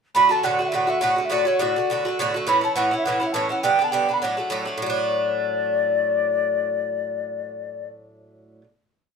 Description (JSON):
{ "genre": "celtic folk, Celtic reel", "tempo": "207 BPM", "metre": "4/4", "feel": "straight", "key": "D major", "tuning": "A4 = 440 Hz", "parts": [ { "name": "Irish bouzouki", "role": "accompaniment", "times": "0.1-8.7 s", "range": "G2 to F#4", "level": "-24 LUFS", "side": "right 2 dB", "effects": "none" }, { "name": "mellow wooden flute", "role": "melody", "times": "0.2-7.9 s", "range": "C#5 to B5", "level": "-21 LUFS", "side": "equal", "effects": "none" } ], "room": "moderate studio reverb, RT60 0.5 s", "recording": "minimal, uncompressed stereo recording", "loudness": "-20 LUFS", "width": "side -5 dB against mid", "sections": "0.1-4.8 A section; 4.8-7.1 final chord", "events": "none", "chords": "0.1 D; 2.5 A; 3.6 G; 4.2 D" }